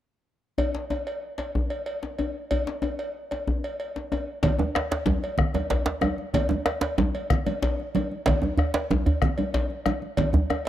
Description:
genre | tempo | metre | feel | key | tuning
west african traditional, West African drum ensemble | 125 BPM (dotted quarters) | 12/8 | straight | none | none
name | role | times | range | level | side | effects
cowbell | percussion | 0.6-10.7 s | none | -31 LUFS | equal | none
djembe | percussion | 0.6-10.6 s | none | -28 LUFS | left 2 dB | none
bombo | percussion | 4.4-10.7 s | none | -27 LUFS | left 2 dB | none
congas | percussion | 4.4-10.5 s | none | -29 LUFS | right 4 dB | none
djembe | percussion | 4.6-10.7 s | none | -25 LUFS | right 2 dB | none
room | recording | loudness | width
little or no reverb | dry, close 1970s-style studio recording | -24 LUFS | side -12 dB against mid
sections
0.6-4.4 A section; 4.4-10.7 B section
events
none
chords
none

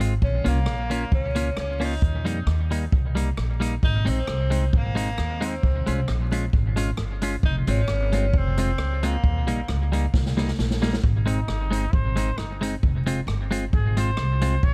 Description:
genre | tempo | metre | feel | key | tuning
ska | 133 BPM | 4/4 | straight | Ab major | A4 = 445 Hz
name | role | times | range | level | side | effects
semi-hollow electric guitar | accompaniment | 0.0-14.5 s | G3 to F4 | -32 LUFS | equal | dub echo
upright bass | bass | 0.0-14.7 s | F1 to F2 | -27 LUFS | equal | none
swinging big-band drum kit | drums | 0.0-14.7 s | hi-hat, kick drum, rim click, snare drum | -28 LUFS | equal | none
clear tenor saxophone | melody | 0.2-9.7 s | Bb3 to Eb4 | -34 LUFS | equal | dub echo
breathy trumpet | melody | 11.3-14.7 s | Eb4 to Db5 | -33 LUFS | equal | none
room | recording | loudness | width
little or no reverb | vinyl crackle | -24 LUFS | mono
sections
0.0-11.0 A section; 11.0-14.7 B section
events
drum fill 10.1-11.0; trumpet solo 11.0-14.7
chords
0.2 Bbm; 2.0 Eb; 3.8 Ab; 5.6 Db; 7.4 Fm; 9.2 Eb; 11.0 Ab; 12.8 Fm

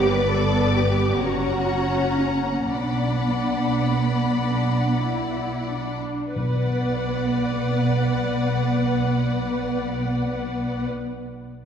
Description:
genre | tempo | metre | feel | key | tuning
classical | 30-49 BPM (dotted quarters) | 6/8 | rubato | B minor | A4 = 440 Hz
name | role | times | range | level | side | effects
warm symphonic violin section | melody | 0.0-10.9 s | F#5 to D6 | -32 LUFS | left 4 dB | none
warm symphonic violin section | second line | 0.0-10.9 s | B4 to F#5 | -30 LUFS | left 4 dB | none
warm symphonic viola section | accompaniment | 0.0-10.9 s | B3 to B4 | -28 LUFS | equal | none
warm symphonic cello section | bass | 0.0-10.9 s | A#3 to B4 | -26 LUFS | equal | none
warm symphonic double bass section | bass | 0.0-10.9 s | F#1 to B1 | -25 LUFS | right 2 dB | none
timpani | percussion | 6.4-11.0 s | B2 | -28 LUFS | left 2 dB | none
room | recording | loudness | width
wet concert hall reverb, RT60 2.3 s | heard from further back in the room | -20 LUFS | side -8 dB against mid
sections
0.0-6.4 A section; 6.4-10.1 B section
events
slowing down 0.0-6.4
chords
0.0 G; 1.2 F#; 2.7 Bm

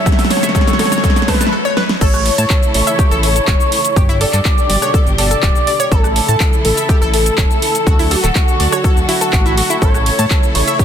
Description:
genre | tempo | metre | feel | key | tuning
progressive house | 123 BPM | 4/4 | straight | A mixolydian | A4 = 440 Hz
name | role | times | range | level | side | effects
expressive synth lead | melody | 0.0-10.8 s | F#4 to E5 | -18 LUFS | equal | analog chorus, vintage 12-bit sampler grit, sidechain pumping, ping-pong delay
soft round pluck | second line | 0.0-10.8 s | F#4 to E5 | -25 LUFS | equal | none
dark studio string section | sustained chords | 0.0-10.8 s | B2 to A4 | -22 LUFS | equal | sidechain pumping
riser | sound effects | 0.0-1.5 s | none | -22 LUFS | right 1 dB | none
fat analog bass | bass | 0.1-10.6 s | D1 to A2 | -18 LUFS | equal | sidechain pumping, high-pass filter
electronic kick drum | drums | 0.1-10.8 s | none | -14 LUFS | equal | overdrive
pop drum kit | drums | 0.1-10.8 s | crash cymbal, handclaps, hi-hat, ride cymbal, rim click, shaker, snare drum | -18 LUFS | equal | overdrive, sidechain pumping on hats, sidechain pumping on perc, sidechain pumping on cymbals
analog pluck | arpeggios | 0.4-10.8 s | E4 to A6 | -22 LUFS | equal | chorus, sidechain pumping, ping-pong delay
room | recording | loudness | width
light reverb, digital ambience | dense, heavily limited modern master | -11 LUFS | side -9 dB against mid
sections
0.0-2.0 A section; 2.0-10.8 B section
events
build-up 0.0-2.0; drum fill 0.0-1.5, 1.8; riser 0.0-1.5; break 1.5-2.0; drop 2.0-10.8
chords
0.1 D; 2.0 A; 4.0 G; 5.9 A; 7.9 D; 9.8 A

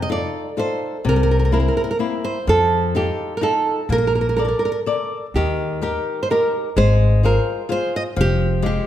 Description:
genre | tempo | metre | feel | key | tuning
italian folk, Italian serenade | 127 BPM | 3/4 | rubato | Bb major, Eb major from 5.3 s | A4 = 440 Hz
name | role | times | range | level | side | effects
nylon-string guitar | melody | 0.0-8.9 s | G4 to Eb5 | -21 LUFS | right 3 dB | none
flamenco guitar | accompaniment | 0.0-8.9 s | C3 to D5 | -23 LUFS | left 5 dB | none
upright bass | bass | 0.0-8.8 s | F1 to F2 | -19 LUFS | equal | none
room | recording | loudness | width
moderate recital hall reverb, RT60 1.4 s | none | -17 LUFS | side -11 dB against mid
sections
0.0-5.3 A section; 5.3-8.9 B section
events
none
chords
0.0 F7; 1.1 C7; 2.5 F7; 3.9 Bbmaj7; 5.3 Eb; 6.8 Ab6; 8.2 Fmadd9

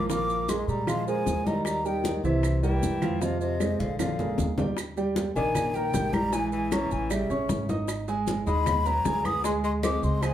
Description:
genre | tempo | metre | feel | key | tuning
Afro-Cuban jazz | 154 BPM | 4/4 | straight | Eb major | A4 = 439 Hz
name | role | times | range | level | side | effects
breathy concert flute | melody | 0.0-10.3 s | Eb5 to Eb6 | -31 LUFS | left 1 dB | none
warm tenor saxophone | second line | 0.0-10.3 s | C3 to Cb4 | -32 LUFS | left 3 dB | none
warm concert grand piano | accompaniment | 0.0-10.3 s | Eb3 to Ab6 | -30 LUFS | right 3 dB | none
upright bass | bass | 0.0-10.3 s | Ab1 to Bb2 | -31 LUFS | equal | none
bongos | percussion | 0.1-10.3 s | none | -36 LUFS | left 4 dB | none
congas | percussion | 0.1-10.3 s | none | -33 LUFS | left 1 dB | none
maracas | percussion | 0.1-10.3 s | none | -43 LUFS | right 6 dB | none
claves | percussion | 0.5-10.3 s | none | -42 LUFS | right 5 dB | none
room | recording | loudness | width
wet club reverb, RT60 0.7 s | heard from further back in the room | -24 LUFS | side -11 dB against mid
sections
0.0-4.8 A section; 4.8-10.3 B section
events
drum fill 3.6-4.8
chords
0.1 Bb7; 1.7 Eb; 2.4 C7; 3.2 Fm7; 4.0 Bb6; 4.8 Ebmaj7; 6.3 Bbm7b5; 7.1 A7; 7.9 Abm9; 9.4 Abadd11

